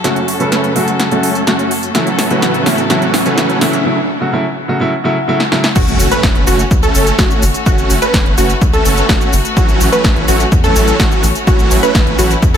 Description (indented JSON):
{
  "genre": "EDM, festival progressive house",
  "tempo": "126 BPM",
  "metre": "4/4",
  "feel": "straight",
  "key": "unclear",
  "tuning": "A4 = 439 Hz",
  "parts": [
    { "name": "warm grand piano", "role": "accompaniment", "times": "0.0-5.6 s", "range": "C#3 to A4", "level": "-16 LUFS", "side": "right 1 dB", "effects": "vintage 12-bit sampler grit, sidechain pumping, ping-pong delay" },
    { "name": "clear studio string section", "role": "sustained chords", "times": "0.0-12.6 s", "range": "F#2 to A4", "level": "-23 LUFS", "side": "left 2 dB", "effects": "sidechain pumping" },
    { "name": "supersaw chords", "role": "riff", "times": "0.0-12.6 s", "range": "E3 to B4", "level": "-17 LUFS", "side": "right 1 dB", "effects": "sidechain pumping, low-pass filter, ping-pong delay" },
    { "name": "big-room dance drum kit", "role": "drums", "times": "0.0-12.6 s", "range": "crash cymbal, hi-hat, shaker, snare drum", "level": "-18 LUFS", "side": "equal", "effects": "overdrive" },
    { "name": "riser, swell and impact", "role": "sound effects", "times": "0.3-7.7 s", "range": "none", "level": "-23 LUFS", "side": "left 1 dB", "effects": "none" },
    { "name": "wide unison pluck", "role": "arpeggios", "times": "5.8-12.6 s", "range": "F#4 to B4", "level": "-18 LUFS", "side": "equal", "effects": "sidechain pumping, ping-pong delay" },
    { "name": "saturated sub bass", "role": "bass", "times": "5.8-12.6 s", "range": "F#1 to E2", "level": "-17 LUFS", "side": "equal", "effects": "sidechain pumping" },
    { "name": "electronic kick drum", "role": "drums", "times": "5.8-12.5 s", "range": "none", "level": "-14 LUFS", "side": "equal", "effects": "overdrive" }
  ],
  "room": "light reverb",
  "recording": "none",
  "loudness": "-10 LUFS",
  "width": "side -8 dB against mid",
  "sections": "0.0-5.8 A section; 5.8-12.6 B section",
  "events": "build-up 0.0-5.8; drum fill 0.0-3.9, 5.4-5.8; filter sweep on supersaw synth 0.0-5.8; swell 5.0-5.8; drop 5.8-12.6; impact 5.8-7.7",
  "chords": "0.0 F#m; 1.9 A6; 5.8 F#m; 9.6 A6"
}